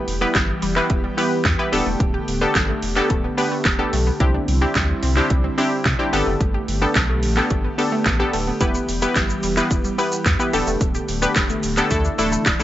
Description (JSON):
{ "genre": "dance-pop", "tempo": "109 BPM", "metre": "4/4", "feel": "straight", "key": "G major", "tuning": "A4 = 441 Hz", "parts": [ { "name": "analog pluck", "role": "accompaniment", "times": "0.0-12.6 s", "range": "A3 to B4", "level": "-22 LUFS", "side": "left 1 dB", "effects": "chorus, sidechain pumping" }, { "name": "airy breathy pad", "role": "sustained chords", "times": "0.0-12.6 s", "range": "D3 to G4", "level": "-27 LUFS", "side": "right 1 dB", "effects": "chorus, sidechain pumping" }, { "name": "saturated sub bass", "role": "bass", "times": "0.1-12.6 s", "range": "D1 to C3", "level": "-24 LUFS", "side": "equal", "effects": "sidechain pumping" }, { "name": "pop drum kit", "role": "drums", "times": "0.1-12.6 s", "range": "handclaps, hi-hat, kick drum, shaker, snare drum", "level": "-22 LUFS", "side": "equal", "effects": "none" }, { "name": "wide unison pluck", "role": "arpeggios", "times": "0.2-12.6 s", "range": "G3 to G4", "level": "-29 LUFS", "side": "right 1 dB", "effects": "sidechain pumping, digital delay" } ], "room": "light reverb", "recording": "nothing above 7.8 kHz", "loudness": "-17 LUFS", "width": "side -13 dB against mid", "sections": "0.0-12.6 A section", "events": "none", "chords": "0.0 Em; 1.7 Gadd9/D; 4.2 Cadd9; 6.1 Gadd9; 8.6 Em; 10.5 Gadd9/D; 11.9 Dsus2" }